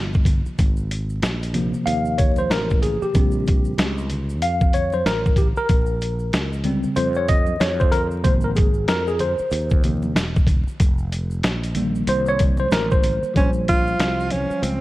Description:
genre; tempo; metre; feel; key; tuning
hip hop, jazz-hop; 94 BPM; 4/4; swing 61% on 16ths; Bb dorian; A4 = 440 Hz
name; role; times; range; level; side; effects
tine electric piano; accompaniment; 0.0-14.8 s; C3 to F5; -22 LUFS; equal; overdrive, fast stereo tremolo
sustaining fretless electric bass; bass; 0.0-14.8 s; E1 to F2; -25 LUFS; equal; none
boom bap sampler-style drum kit; drums; 0.1-14.8 s; hi-hat, kick drum, snare drum; -20 LUFS; equal; vintage 12-bit sampler grit
maracas and congas; percussion; 0.1-14.8 s; none; -35 LUFS; right 1 dB; none
breathy alto saxophone; melody; 13.4-14.8 s; C4 to F4; -22 LUFS; right 2 dB; tape echo
room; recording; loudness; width
light reverb; vinyl crackle; -18 LUFS; side -17 dB against mid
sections
0.0-13.4 A section; 13.4-14.8 B section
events
tine electric piano solo 0.0-13.4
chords
0.0 Ab69; 3.1 Bbm69; 8.2 Ab69; 10.8 F9sus4; 13.4 Bbm69

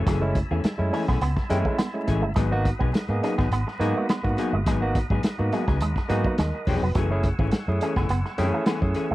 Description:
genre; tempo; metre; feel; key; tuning
funk; 105 BPM; 4/4; straight; unclear; A4 = 439 Hz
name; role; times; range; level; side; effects
vintage hollow-body jazz guitar; accompaniment; 0.0-9.1 s; E3 to G#4; -29 LUFS; left 5 dB; none
tonewheel organ; sustained chords; 0.0-9.1 s; F#5 to E6; -38 LUFS; equal; slow rotary speaker, overdrive
vintage muted fingered electric bass; bass; 0.0-9.1 s; E1 to G#2; -25 LUFS; equal; none
electric guitar with an envelope filter; riff; 0.1-9.1 s; E3 to C#4; -32 LUFS; right 4 dB; spring reverb
vintage drum kit; drums; 0.1-9.1 s; hi-hat, kick drum, snare drum; -26 LUFS; equal; none
barky tine electric piano; stabs; 0.2-9.1 s; G#3 to D#5; -28 LUFS; right 2 dB; overdrive
room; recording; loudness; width
little or no reverb; dry, close 1970s-style studio recording, vinyl crackle; -22 LUFS; side -17 dB against mid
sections
0.0-9.1 A section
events
none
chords
0.0 F#m9; 2.4 G#m7; 7.0 F#m9

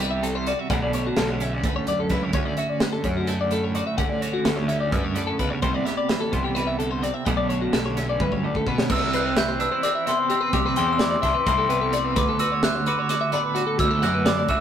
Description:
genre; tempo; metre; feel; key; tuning
math rock and midwest emo; 256 BPM (eighths); 7/8; straight; D major; A4 = 440 Hz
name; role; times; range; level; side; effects
twelve-string electric guitar; accompaniment; 0.0-14.6 s; D2 to G4; -28 LUFS; right 4 dB; tremolo
twelve-string electric guitar; arpeggios; 0.0-14.6 s; F#4 to G5; -27 LUFS; left 4 dB; none
fuzz picked electric bass; bass; 0.0-14.6 s; B1 to D3; -28 LUFS; equal; overdrive
crisp fusion drum kit; drums; 0.0-14.6 s; crash cymbal, hi-hat, kick drum, snare drum, toms; -26 LUFS; right 1 dB; none
glockenspiel with brass mallets; melody; 8.9-14.6 s; B5 to G6; -23 LUFS; left 1 dB; none
room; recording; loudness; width
moderate stone room reverb, RT60 1.0 s; rough rehearsal-room recording; -20 LUFS; side -9 dB against mid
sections
0.0-8.9 A section; 8.9-14.6 B section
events
drum fill 8.2-8.9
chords
0.0 Am9/C; 0.7 Bm9; 2.3 Dmaj7; 5.6 Am9/C; 7.3 Bm9; 8.9 Cmaj7; 12.2 D69

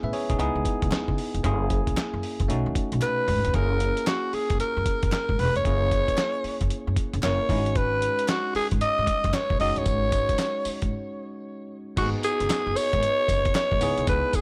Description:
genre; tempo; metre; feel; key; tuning
R&B, new jack swing; 114 BPM; 4/4; swing 64% on 16ths; unclear; A4 = 441 Hz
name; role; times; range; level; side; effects
bell-like tine electric piano; accompaniment; 0.0-14.4 s; G#3 to E5; -34 LUFS; equal; none
upright bass; bass; 0.0-14.2 s; E1 to C#3; -31 LUFS; equal; none
dusty soul sampler-style drum kit; drums; 0.1-14.4 s; crash cymbal, handclaps, hi-hat, kick drum, snare drum, tambourine, toms; -30 LUFS; equal; none
group handclap; percussion; 0.9-13.7 s; none; -43 LUFS; equal; none
raspy alto saxophone; melody; 3.0-14.4 s; F#4 to D#5; -28 LUFS; equal; none
room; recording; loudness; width
little or no reverb; none; -25 LUFS; mono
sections
0.0-3.5 A section; 3.5-12.0 B section; 12.0-14.4 C section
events
drum fill 3.0-3.5; break 10.9-12.0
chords
0.4 C#m9; 1.4 F#7; 2.5 B7; 3.5 F#7; 7.5 G#7sus4; 12.0 G#m7; 13.8 C#m7

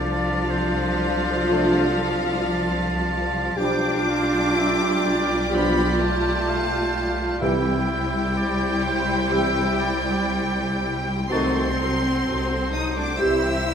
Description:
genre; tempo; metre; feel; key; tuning
classical; 53-65 BPM; 4/4; rubato; C major; A4 = 442 Hz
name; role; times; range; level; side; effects
rich studio violin section; melody; 0.0-13.7 s; F5 to E6; -29 LUFS; equal; none
clear oboe; second line; 0.0-13.7 s; C5 to A5; -30 LUFS; equal; none
mellow clarinet; second line; 0.0-13.6 s; D4 to G4; -29 LUFS; equal; none
mellow hollow concert flute; second line; 0.0-13.6 s; G6 to A6; -31 LUFS; right 2 dB; none
rich studio violin section; second line; 0.0-13.7 s; E4 to E5; -32 LUFS; left 1 dB; none
rich studio viola section; accompaniment; 0.0-13.7 s; E3 to F4; -29 LUFS; equal; none
rich studio cello section; bass; 0.0-13.7 s; F3 to E4; -27 LUFS; equal; none
warm studio double bass section; bass; 0.0-13.7 s; B1 to C2; -28 LUFS; right 1 dB; none
dark trombone section; sustained chords; 1.5-13.6 s; Eb3 to A3; -30 LUFS; right 1 dB; none
mellow French horn section; sustained chords; 1.5-13.6 s; C4 to G4; -26 LUFS; equal; none
timpani; percussion; 7.4-8.8 s; C3; -30 LUFS; right 1 dB; none
room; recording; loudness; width
wet stone room reverb, RT60 0.9 s; none; -20 LUFS; side -7 dB against mid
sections
0.0-13.7 A section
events
none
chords
0.0 Dm7/C; 3.6 G7/B; 7.4 C; 11.3 Cdim7; 13.2 C

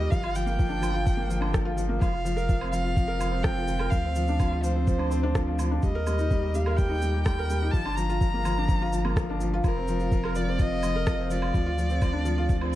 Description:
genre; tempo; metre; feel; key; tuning
piano and strings electronica; 126 BPM; 4/4; straight; G minor; A4 = 440 Hz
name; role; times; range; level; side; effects
dark violin; melody; 0.0-12.8 s; Bb4 to Bb5; -33 LUFS; equal; none
felt-muted upright piano; riff; 0.0-12.8 s; F3 to Bb4; -29 LUFS; left 1 dB; none
warm sub bass; bass; 0.0-12.8 s; F1 to Eb2; -29 LUFS; equal; sidechain pumping
electronic kick drum; drums; 0.1-12.6 s; none; -25 LUFS; equal; none
electronic shaker, woodblock and rim click; drums; 0.1-12.7 s; none; -37 LUFS; right 2 dB; none
reverse cymbal; sound effects; 12.6-12.8 s; none; -48 LUFS; right 5 dB; none
room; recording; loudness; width
light reverb, digital ambience; dark, warm production; -24 LUFS; side -14 dB against mid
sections
0.0-12.8 A section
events
reverse cymbal 12.6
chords
0.1 Gm7; 2.0 Fsus4; 3.9 Dm7; 5.8 Eb; 7.7 Gm7; 9.6 Fsus4; 11.5 Dm7

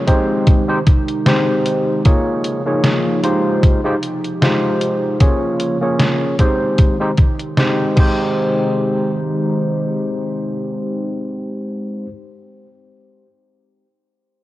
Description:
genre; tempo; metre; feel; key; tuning
vaporwave; 76 BPM; 4/4; swing 55% on 16ths; Ab major; A4 = 439 Hz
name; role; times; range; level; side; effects
overdriven tine electric piano; accompaniment; 0.0-12.1 s; Ab3 to Db5; -18 LUFS; equal; analog chorus, analog delay
warbly tape-like pad; sustained chords; 0.0-12.1 s; C3 to G4; -23 LUFS; right 1 dB; chorus, built-in reverb
detuned 8-bit digital drum machine; drums; 0.1-8.1 s; crash cymbal, hi-hat, snare drum; -19 LUFS; equal; gated reverb
electronic kick drum; drums; 0.1-8.1 s; none; -12 LUFS; equal; overdrive
room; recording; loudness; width
light reverb; cassette tape; -14 LUFS; side -16 dB against mid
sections
0.0-8.4 A section; 8.4-11.5 B section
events
none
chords
0.1 Abmaj7; 2.1 Eb9sus4; 3.6 Fm9; 5.2 Bbm7; 6.4 Abmaj7

